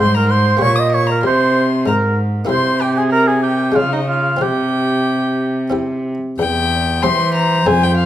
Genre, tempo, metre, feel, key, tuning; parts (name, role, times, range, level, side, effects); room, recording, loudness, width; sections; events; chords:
classical, baroque-style sonata movement with continuo; 94 BPM; 3/4; uneven beats; A4 = 440 Hz
warm violin; melody; 0.0-8.1 s; Eb5 to Eb6+23c; -21 LUFS; left 6 dB
warm oboe; second line; 0.0-8.1 s; Eb4 to Eb5; -18 LUFS; right 3 dB
buff-stop harpsichord; accompaniment; 0.0-8.1 s; E2 to C5; -21 LUFS; left 2 dB
rich cello; bass; 0.0-8.1 s; E2 to E3; -17 LUFS; equal
moderate recital hall reverb, RT60 1.5 s; -14 LUFS; side -12 dB against mid
0.0-6.4 A section; 6.4-8.1 B section
0.0 Fm/Ab; 0.6 Abmaj9; 2.5 C7; 3.8 Db; 4.4 Csus4; 5.7 C; 6.4 C/E